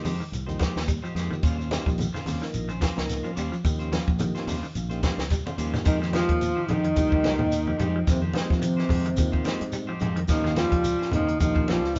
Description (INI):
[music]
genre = afrobeat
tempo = 108 BPM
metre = 4/4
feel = swing 55% on 16ths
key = F minor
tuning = A4 = 439 Hz
[part]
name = mellow tonewheel organ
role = accompaniment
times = 0.0-11.8 s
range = F3 to Bb4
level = -38 LUFS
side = equal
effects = slow rotary speaker
[part]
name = electric guitar at the edge of break-up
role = stabs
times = 0.0-11.9 s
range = G3 to C5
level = -39 LUFS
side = equal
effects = none
[part]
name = fingered electric bass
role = bass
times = 0.0-12.0 s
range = Bb1 to F3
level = -32 LUFS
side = equal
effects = none
[part]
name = congas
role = percussion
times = 0.0-11.8 s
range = none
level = -34 LUFS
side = equal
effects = none
[part]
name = semi-hollow electric guitar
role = arpeggios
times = 0.1-11.9 s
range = C3 to G3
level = -38 LUFS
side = equal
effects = none
[part]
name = compact cocktail drum kit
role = drums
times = 0.1-12.0 s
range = hi-hat, kick drum, snare drum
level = -29 LUFS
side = equal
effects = none
[part]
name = shekere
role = percussion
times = 0.1-12.0 s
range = none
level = -40 LUFS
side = equal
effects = none
[part]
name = trombone with bucket mute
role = melody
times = 5.9-12.0 s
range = C4 to F4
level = -29 LUFS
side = equal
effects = none
[part]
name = bright trombone section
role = second line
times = 5.9-12.0 s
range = C3 to F3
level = -40 LUFS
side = equal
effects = none
[part]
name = edgy tenor saxophone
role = second line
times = 5.9-12.0 s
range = C3 to G3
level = -37 LUFS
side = equal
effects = none
[sound]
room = light reverb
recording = band playing live in one room, nothing above 7.6 kHz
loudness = -25 LUFS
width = mono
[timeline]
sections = 0.0-5.9 A section; 5.9-12.0 B section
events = drum fill 5.4-5.9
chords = 0.0 Fm9; 1.4 Eb13; 5.9 Fm9; 10.3 Eb13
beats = 0.33 0.88 | 1.44 1.99 2.54 3.09 | 3.65 4.20 4.75 5.31 | 5.86 6.41 6.96 7.52 | 8.07 8.63 9.18 9.73 | 10.29 10.84 11.40 11.95